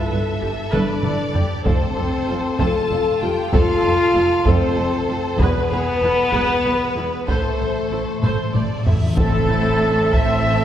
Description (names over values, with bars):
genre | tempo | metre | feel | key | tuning
cinematic, epic orchestral film score | 64 BPM (dotted quarters) | 6/8 | straight | A minor | A4 = 439 Hz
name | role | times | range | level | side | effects
rich studio violin section | melody | 0.0-10.6 s | A4 to A5 | -29 LUFS | left 3 dB | none
warm symphonic violin section | second line | 0.0-10.6 s | C4 to E5 | -29 LUFS | left 2 dB | none
rich symphonic viola section | accompaniment | 0.0-10.6 s | A3 to C5 | -28 LUFS | right 1 dB | none
mellow French horn section | sustained chords | 0.0-10.6 s | A3 to A4 | -21 LUFS | left 2 dB | none
dark studio cello section | bass | 0.1-10.6 s | E2 to A2 | -27 LUFS | right 1 dB | none
rich symphonic double bass section | bass | 0.1-10.6 s | E1 to A1 | -26 LUFS | right 2 dB | none
taiko ensemble | drums | 0.7-10.6 s | none | -22 LUFS | equal | none
timpani | percussion | 5.4-9.2 s | E2 to A2 | -27 LUFS | left 2 dB | none
reverse cymbal and impact | sound effects | 9.0-10.6 s | none | -30 LUFS | equal | none
small flute group | second line | 9.2-10.6 s | A4 to E5 | -26 LUFS | left 1 dB | none
clear symphonic string section | sustained chords | 9.2-10.6 s | C4 to A5 | -26 LUFS | left 1 dB | none
mellow trumpet | stabs | 9.2-10.6 s | A4 to E5 | -21 LUFS | right 2 dB | none
room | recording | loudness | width
wet concert hall reverb, RT60 2.2 s | recorded in a church or concert hall | -16 LUFS | side -10 dB against mid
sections
0.0-9.2 A section; 9.2-10.6 A section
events
drum fill 0.7-1.7, 8.2-9.2; timpani fill 7.3-9.2; reverse cymbal 9.0; impact 9.2-10.6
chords
0.0 Gadd9; 1.7 F; 5.4 E; 7.3 Am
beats
0.73 | 1.66 2.60 | 3.54 4.46 | 5.40 6.33 | 7.29 8.24 | 9.19 10.14